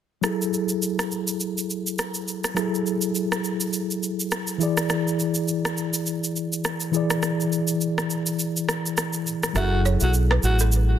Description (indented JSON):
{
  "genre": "afrobeats",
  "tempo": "103 BPM",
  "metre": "4/4",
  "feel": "swing 58% on 16ths",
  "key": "F# minor",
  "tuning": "A4 = 440 Hz",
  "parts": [
    { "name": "mellow tine electric piano", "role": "accompaniment", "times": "0.2-11.0 s", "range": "E3 to D5", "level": "-25 LUFS", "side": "left 1 dB", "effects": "medium stereo tremolo" },
    { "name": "electronic shaker and rim click", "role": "drums", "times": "0.2-10.9 s", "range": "none", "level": "-27 LUFS", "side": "right 1 dB", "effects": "none" },
    { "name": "growling alto saxophone", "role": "melody", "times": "9.6-10.6 s", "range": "F#4", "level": "-28 LUFS", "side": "equal", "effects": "tape echo" },
    { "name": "balafon", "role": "riff", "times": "9.6-10.7 s", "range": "A4 to E5", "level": "-32 LUFS", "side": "right 6 dB", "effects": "tape echo" },
    { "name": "deep dub fingered electric bass", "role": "bass", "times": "9.6-10.9 s", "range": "F#1 to B1", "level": "-20 LUFS", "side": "equal", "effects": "none" }
  ],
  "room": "light reverb, studio ambience",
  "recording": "dense, heavily limited modern master",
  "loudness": "-22 LUFS",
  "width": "side -10 dB against mid",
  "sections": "0.2-9.6 A section; 9.6-11.0 B section",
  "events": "kick muted 8.4-9.6, 9.6-11.0",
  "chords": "0.2 F#m9; 4.6 E7; 9.6 F#m9",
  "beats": "| 0.24 0.82 1.40 1.99 | 2.57 3.15 3.73 4.32 | 4.90 5.48 6.06 6.65 | 7.23 7.81 8.39 8.98 | 9.56 10.14 10.72"
}